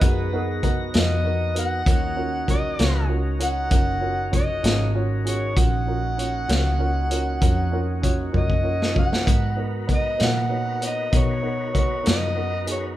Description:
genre	slow blues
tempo	65 BPM (dotted quarters)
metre	12/8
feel	straight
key	Eb minor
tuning	A4 = 440 Hz
part	overdriven harmonica	melody	0.0-12.8 s	Cb5 to Gb5	-27 LUFS	equal	none
part	electric slide guitar	second line	0.0-0.6 s	Ab4	-33 LUFS	right 1 dB	none
part	warm upright piano	accompaniment	0.0-12.9 s	Cb4 to Db5	-30 LUFS	right 2 dB	none
part	tonewheel organ	sustained chords	0.0-12.9 s	Bb3 to Bb5	-33 LUFS	equal	slow rotary speaker
part	vintage muted fingered electric bass	bass	0.0-13.0 s	Gb1 to Cb3	-25 LUFS	equal	none
part	vintage drum kit	drums	0.0-12.8 s	hi-hat, kick drum, snare drum	-22 LUFS	equal	none
room	light reverb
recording	band playing live in one room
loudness	-20 LUFS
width	side -14 dB against mid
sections	0.0-13.0 A section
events	drum fill 8.3-9.3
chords	0.0 Abm7; 1.9 Ebm7; 9.3 Abm7

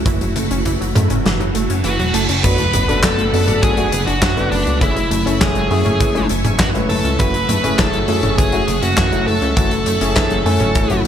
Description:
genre	synthwave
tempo	101 BPM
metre	4/4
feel	straight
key	F# minor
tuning	A4 = 439 Hz
part	string machine, full ensemble	sustained chords	0.0-11.1 s	A3 to C#6	-25 LUFS	right 1 dB	ensemble chorus, sidechain pumping
part	analog pluck	arpeggios	0.0-11.0 s	E3 to D4	-24 LUFS	right 2 dB	chorus, ping-pong delay
part	chorused synth bass	bass	0.0-11.1 s	E1 to F#2	-20 LUFS	equal	none
part	huge arena drum kit	drums	0.1-11.1 s	crash cymbal, handclaps, hi-hat, snare drum, toms	-21 LUFS	left 1 dB	gated reverb
part	kick drum	drums	0.1-10.9 s	none	-22 LUFS	equal	none
part	reverse cymbal and sub drop	sound effects	1.6-4.8 s	none	-26 LUFS	right 2 dB	none
part	smooth overdriven lead guitar	melody	1.8-11.0 s	D4 to B4	-20 LUFS	right 1 dB	ping-pong delay
part	dark baby grand piano	stabs	2.4-11.0 s	A3 to G#5	-22 LUFS	left 3 dB	vintage 12-bit sampler grit
room	light reverb, small room ambience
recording	bright 1980s-style digital production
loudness	-14 LUFS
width	side -9 dB against mid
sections	0.0-2.4 A section; 2.4-11.1 B section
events	reverse cymbal 1.6-2.4; impact 2.4-4.8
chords	0.0 F#m7; 2.4 D6/F#; 4.8 Amaj7/F#; 7.2 F#m7

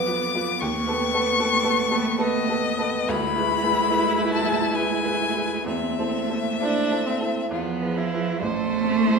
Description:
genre	classical, slow romantic movement for piano quartet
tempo	62-78 BPM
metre	3/4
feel	rubato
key	A minor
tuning	A4 = 441 Hz
part	warm violin	melody	0.0-9.2 s	F4 to D6	-25 LUFS	left 7 dB	none
part	warm cello	second line	0.0-9.2 s	F3 to A3	-27 LUFS	right 4 dB	none
part	warm grand piano	accompaniment	0.0-9.2 s	A1 to C5	-26 LUFS	right 1 dB	none
part	warm viola	accompaniment	0.0-9.2 s	B3 to C5	-30 LUFS	right 3 dB	none
room	moderate recital hall reverb, RT60 1.3 s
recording	minimal, uncompressed stereo recording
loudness	-21 LUFS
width	side -4 dB against mid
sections	0.0-8.4 A section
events	none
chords	0.0 Bdim/D; 0.6 B7/D#; 3.1 E7/D; 5.7 Am/E; 7.5 E; 8.4 Am

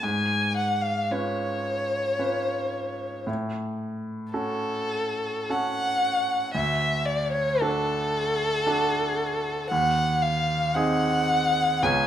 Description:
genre	classical, romantic duo for violin and grand piano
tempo	56 BPM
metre	3/4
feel	rubato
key	F# minor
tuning	A4 = 439 Hz
part	dark violin	melody	0.0-12.1 s	A4 to G#5	-25 LUFS	left 1 dB	none
part	bright grand piano	accompaniment	0.0-12.1 s	C#2 to C#5	-28 LUFS	right 1 dB	none
room	moderate recital hall reverb, RT60 1.2 s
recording	minimal, uncompressed stereo recording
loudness	-23 LUFS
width	side -10 dB against mid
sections	0.0-12.1 A section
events	none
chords	0.0 C#7/G#; 3.3 F#m/A; 6.5 D; 9.7 G#7/D#

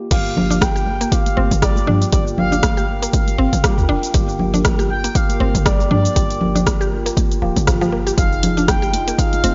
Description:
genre	afro house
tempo	119 BPM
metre	4/4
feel	swing 57% on 16ths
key	G phrygian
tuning	A4 = 440 Hz
part	tine electric piano	stabs	0.0-9.5 s	Bb3 to Ab4	-30 LUFS	equal	medium tremolo, sidechain pumping, analog delay
part	expressive portamento lead	melody	0.1-9.5 s	D5 to G5	-27 LUFS	equal	subtle chorus, analog delay
part	dark analog pad	sustained chords	1.7-9.5 s	F4 to G5	-31 LUFS	equal	chorus, phaser, vintage 12-bit sampler grit, sidechain pumping
part	mallet-like synth pluck	arpeggios	0.1-9.5 s	F3 to G4	-27 LUFS	equal	chorus, phaser, sidechain pumping, analog delay
part	warm 808-style bass	bass	0.1-9.5 s	D1 to G2	-24 LUFS	equal	tube saturation, sidechain pumping
part	deep house drum kit	drums	0.1-9.5 s	crash cymbal, hi-hat, rim click, shaker, toms	-25 LUFS	equal	none
part	electronic kick drum	drums	0.1-9.3 s	none	-21 LUFS	equal	none
part	congas	percussion	0.1-9.5 s	none	-25 LUFS	equal	none
room	light reverb, digital ambience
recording	dry, gritty hardware recording, nothing above 7.5 kHz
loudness	-17 LUFS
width	mono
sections	0.1-9.5 A section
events	drop 0.1-9.5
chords	0.1 Gm7; 8.2 Fm7

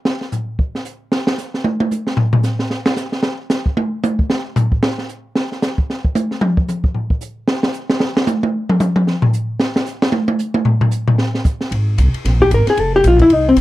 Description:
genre	jazz, small-group swing and bop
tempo	226 BPM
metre	4/4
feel	swing 59% on 8ths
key	Ab major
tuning	A4 = 441 Hz
part	open jazz drum kit	drums	0.1-13.6 s	hi-hat, kick drum, ride cymbal, snare drum, toms	-16 LUFS	equal	none
part	upright bass	bass	11.7-13.6 s	F1 to C2	-14 LUFS	equal	none
part	hollow-body jazz guitar	melody	12.4-13.5 s	C4 to Bb4	-11 LUFS	left 2 dB	none
room	light reverb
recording	dry, close 1970s-style studio recording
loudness	-15 LUFS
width	side -16 dB against mid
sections	0.0-3.2 A section; 3.2-11.7 A section; 11.7-13.6 A section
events	drum solo 0.0-11.7; hollow-body jazz guitar solo 11.7-13.6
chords	0.0 N.C.; 11.7 Abadd9; 12.8 F5

